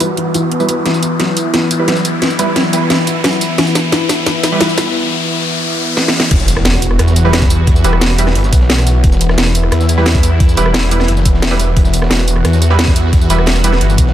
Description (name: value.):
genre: dark technical drum and bass.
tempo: 176 BPM.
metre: 4/4.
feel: straight.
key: E minor.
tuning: A4 = 440 Hz.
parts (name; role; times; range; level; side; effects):
sweeping resonant pad; sustained chords; 0.0-14.1 s; E3 to F#4; -18 LUFS; left 1 dB; chorus, sidechain pumping.
felt-muted upright piano; arpeggios; 0.0-4.9 s; E3 to E4; -19 LUFS; left 4 dB; sidechain pumping, low-pass filter, dub echo.
orchestra-hit-like synth stab; stabs; 0.0-4.9, 7.2-13.7 s; G3 to B4; -20 LUFS; right 4 dB; built-in reverb, dub echo.
drum and bass drum kit; drums; 0.0-14.1 s; crash cymbal, hi-hat, rim click, snare drum, tambourine; -16 LUFS; equal; overdrive.
riser and impact; sound effects; 0.0-7.7 s; none; -20 LUFS; left 1 dB; none.
snarling distorted saw bass; bass; 6.3-14.1 s; E1 to E2; -13 LUFS; equal; distortion.
crunchy breakbeat drum kit; drums; 6.3-14.1 s; hi-hat, snare drum; -29 LUFS; equal; none.
electronic kick drum; drums; 6.3-14.0 s; none; -11 LUFS; equal; overdrive.
room: light reverb, small room ambience.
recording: none.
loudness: -10 LUFS.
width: side -11 dB against mid.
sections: 0.0-6.3 A section; 6.3-14.1 B section.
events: build-up 0.0-6.3; riser 0.0-6.3; filter sweep on felt piano 0.0-6.3; filter sweep on synth stab 0.0-6.3; drum fill 0.9-4.9, 6.0-6.3; drop 6.3-14.1; impact 6.3-7.7.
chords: 0.0 Em.